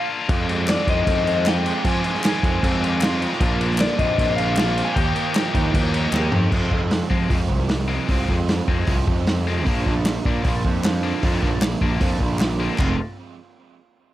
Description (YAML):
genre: indie rock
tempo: 154 BPM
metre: 4/4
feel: straight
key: F dorian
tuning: A4 = 442 Hz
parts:
  - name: electric guitar through a small old amp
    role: melody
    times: 0.0-6.1 s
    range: D5 to Ab5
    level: -25 LUFS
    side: left 3 dB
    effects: plate reverb, tape echo
  - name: scooped high-gain guitar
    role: riff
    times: 0.0-13.0 s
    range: Eb3 to G4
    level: -27 LUFS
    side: left 5 dB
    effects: distortion
  - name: crunchy overdriven guitar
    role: riff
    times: 0.3-12.9 s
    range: F2 to G4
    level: -27 LUFS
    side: right 7 dB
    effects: analog chorus, tape echo
  - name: fuzz picked electric bass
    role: bass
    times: 0.3-13.0 s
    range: F1 to F3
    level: -23 LUFS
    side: equal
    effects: overdrive
  - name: vintage drum kit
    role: drums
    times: 0.3-12.9 s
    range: crash cymbal, hi-hat, kick drum, snare drum, toms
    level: -22 LUFS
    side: equal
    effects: none
  - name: group handclap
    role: percussion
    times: 0.7-6.2, 10.1-13.0 s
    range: none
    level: -31 LUFS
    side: left 2 dB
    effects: none
room: light reverb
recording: none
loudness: -18 LUFS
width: side -14 dB against mid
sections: 0.0-6.5 A section; 6.5-12.8 B section; 12.8-14.1 C section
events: drum fill 6.1-6.5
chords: 0.3 Fm7; 3.4 Bbadd9; 5.0 Ebadd9; 6.5 Fm; 9.7 Bb; 12.8 Fm